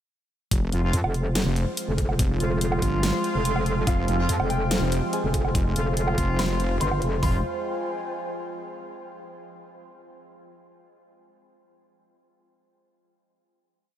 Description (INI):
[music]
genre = heavy wobble dubstep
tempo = 143 BPM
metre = 4/4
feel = half-time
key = F minor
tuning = A4 = 439 Hz
[part]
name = evolving wavetable pad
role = sustained chords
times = 1.2-7.4 s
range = F3 to F4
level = -32 LUFS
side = right 1 dB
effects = phaser, built-in reverb, tremolo, sidechain pumping
[part]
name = wobble bass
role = bass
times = 0.5-7.4 s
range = F1 to G1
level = -25 LUFS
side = equal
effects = chorus, overdrive
[part]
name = dubstep drum kit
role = drums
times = 0.5-7.3 s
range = hi-hat, kick drum, toms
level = -25 LUFS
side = equal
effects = studio ambience
[part]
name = dubstep drum kit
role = drums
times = 0.5-7.1 s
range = hi-hat, snare drum, woodblock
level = -31 LUFS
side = right 1 dB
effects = studio ambience
[part]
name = airy breathy pad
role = texture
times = 0.8-8.9 s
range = F4 to Ab5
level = -36 LUFS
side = equal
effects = chorus, sidechain pumping
[part]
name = warm brass ensemble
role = stabs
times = 0.7-7.4 s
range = F3 to F4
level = -34 LUFS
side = left 1 dB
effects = analog delay
[part]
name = metallic wobble bass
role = bass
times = 0.9-7.2 s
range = F1 to F2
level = -25 LUFS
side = equal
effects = chorus, overdrive
[part]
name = dark baby grand piano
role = melody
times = 3.9-7.4 s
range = F4 to C6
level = -34 LUFS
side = left 1 dB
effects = wide subtle chorus, analog delay
[sound]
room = light reverb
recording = none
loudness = -22 LUFS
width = side -11 dB against mid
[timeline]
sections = 0.5-7.2 drop; 7.2-8.9 final chord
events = drop 0.5-7.2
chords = 0.5 Fm; 7.2 Fmadd9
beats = | 0.51 0.93 1.35 1.77 | 2.19 2.61 3.03 3.45 | 3.87 4.29 4.71 5.13 | 5.55 5.97 6.39 6.81 | 7.23 7.65 8.07 8.49